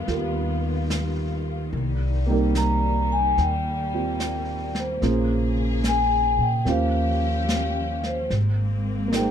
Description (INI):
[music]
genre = jazz ballad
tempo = 73 BPM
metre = 4/4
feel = swing 67% on 8ths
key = unclear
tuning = A4 = 436 Hz
[part]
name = vibraphone with medium mallets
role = melody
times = 0.0-9.3 s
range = C5 to Bb5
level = -25 LUFS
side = left 2 dB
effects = none
[part]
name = dark grand piano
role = accompaniment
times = 0.0-9.3 s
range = G3 to C5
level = -27 LUFS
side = right 4 dB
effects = none
[part]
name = warm symphonic string section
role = sustained chords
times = 0.0-9.3 s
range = Db3 to Ab4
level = -31 LUFS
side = left 3 dB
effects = none
[part]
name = upright bass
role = bass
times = 0.0-9.3 s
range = Ab1 to Bb2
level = -25 LUFS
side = equal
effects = none
[part]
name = jazz brush drum kit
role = drums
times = 0.1-9.3 s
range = brushed snare drum, hi-hat, snare drum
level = -31 LUFS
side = equal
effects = none
[sound]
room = light reverb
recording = dark, warm production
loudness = -21 LUFS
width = side -8 dB against mid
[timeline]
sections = 0.0-9.3 A section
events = none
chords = 0.0 G7alt; 1.7 Cm7; 5.0 Bbm9; 6.7 Eb13; 8.3 Abadd9